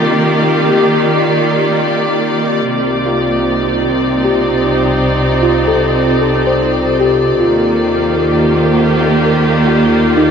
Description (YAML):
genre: ambient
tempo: 76 BPM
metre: 3/4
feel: straight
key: C dorian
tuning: A4 = 439 Hz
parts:
  - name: dark chamber string section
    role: sustained chords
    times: 0.0-10.3 s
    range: C3 to D5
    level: -12 LUFS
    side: equal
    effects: low-pass filter
  - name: muted felt-like synth keys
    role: arpeggios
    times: 0.0-10.3 s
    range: C4 to C5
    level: -16 LUFS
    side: left 1 dB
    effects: chorus, diffuse ambient delay
  - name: analog drone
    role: drone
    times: 0.0-2.7 s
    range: none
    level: barely audible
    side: none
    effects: none
  - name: warm studio double bass section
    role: bass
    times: 2.7-10.3 s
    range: C2 to Eb2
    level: -20 LUFS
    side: right 2 dB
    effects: none
room: wet cathedral reverb, RT60 7.4 s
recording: in a vast, echoing space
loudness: -11 LUFS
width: side -7 dB against mid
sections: 0.0-2.7 A section; 2.7-10.3 B section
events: none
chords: 0.0 Cm7; 7.4 Ebmaj7